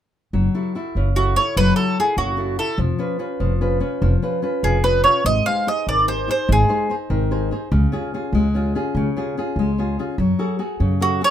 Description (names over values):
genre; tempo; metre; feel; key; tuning
italian folk, Italian serenade; 97 BPM (dotted quarters); 6/8; straight; F# harmonic minor; A4 = 445 Hz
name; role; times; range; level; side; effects
nylon-string guitar; accompaniment; 0.3-11.3 s; C#3 to B#4; -22 LUFS; left 2 dB; none
upright bass; bass; 0.3-11.2 s; E#1 to F#2; -20 LUFS; equal; none
bowl-back mandolin; melody; 1.2-6.9, 11.0-11.3 s; F#4 to E#5; -18 LUFS; right 2 dB; none
room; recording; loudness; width
light reverb; minimal, uncompressed stereo recording; -18 LUFS; side -10 dB against mid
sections
0.3-11.3 A section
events
none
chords
0.3 F#m7; 2.8 C#7/E#; 5.3 G#; 7.7 C#; 10.2 F#madd9